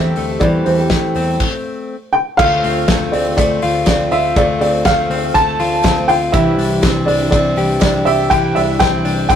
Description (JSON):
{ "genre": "jangly indie pop", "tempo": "122 BPM", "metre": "4/4", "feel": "straight", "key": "D minor", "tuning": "A4 = 438 Hz", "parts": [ { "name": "dark upright piano", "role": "melody", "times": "0.0-9.4 s", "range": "C5 to A5", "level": "-16 LUFS", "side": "right 1 dB", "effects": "none" }, { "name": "picked twelve-string acoustic guitar", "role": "accompaniment", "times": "0.0-9.4 s", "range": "C3 to A4", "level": "-24 LUFS", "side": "right 1 dB", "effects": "none" }, { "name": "direct-recorded clean electric guitar", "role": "arpeggios", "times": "0.0-9.4 s", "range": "E3 to G4", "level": "-18 LUFS", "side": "left 3 dB", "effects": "none" }, { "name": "vintage muted picked electric bass", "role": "bass", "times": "0.0-9.4 s", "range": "C2 to E2", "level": "-22 LUFS", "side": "equal", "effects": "none" }, { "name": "loose indie drum kit", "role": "drums", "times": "0.2-9.4 s", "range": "crash cymbal, hi-hat, kick drum, ride cymbal, snare drum", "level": "-18 LUFS", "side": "equal", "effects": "none" }, { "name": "group handclap", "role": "percussion", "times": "2.9-8.9 s", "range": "none", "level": "-36 LUFS", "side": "right 3 dB", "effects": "none" } ], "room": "light reverb", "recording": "rough rehearsal-room recording, tube saturation", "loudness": "-12 LUFS", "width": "side -9 dB against mid", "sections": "0.0-2.4 A section; 2.4-9.4 B section", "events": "stop 1.4-2.4", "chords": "0.0 Am7; 2.4 Dm7; 6.3 Cadd9", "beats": "| 0.41 0.91 1.40 1.90 | 2.39 2.88 3.38 3.87 | 4.36 4.86 5.35 5.84 | 6.34 6.83 7.33 7.82 | 8.31 8.80 9.30" }